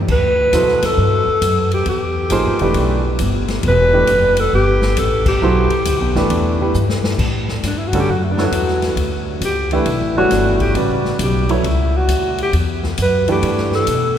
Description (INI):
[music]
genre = modal jazz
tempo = 135 BPM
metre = 4/4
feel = swing 66% on 8ths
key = A mixolydian from 7.2 s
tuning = A4 = 440 Hz
[part]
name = upright bass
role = bass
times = 0.0-14.2 s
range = E1 to B2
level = -18 LUFS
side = left 1 dB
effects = none
[part]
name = breathy alto saxophone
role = melody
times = 0.1-14.2 s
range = A3 to B4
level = -18 LUFS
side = equal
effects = none
[part]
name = swinging big-band drum kit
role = drums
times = 0.1-14.0 s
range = crash cymbal, hi-hat, kick drum, ride cymbal, snare drum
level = -25 LUFS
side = left 2 dB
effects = none
[part]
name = warm baby grand piano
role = accompaniment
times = 0.5-13.9 s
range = B2 to D5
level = -21 LUFS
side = right 2 dB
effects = none
[sound]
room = wet cathedral reverb, RT60 5.7 s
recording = recorded in a church or concert hall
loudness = -14 LUFS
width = side -9 dB against mid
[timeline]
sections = 0.0-7.2 A section; 7.2-14.2 B section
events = band accent 5.2; drum fill 6.7-7.2; alto saxophone solo 7.2-14.2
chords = 0.1 Em; 7.2 A9sus4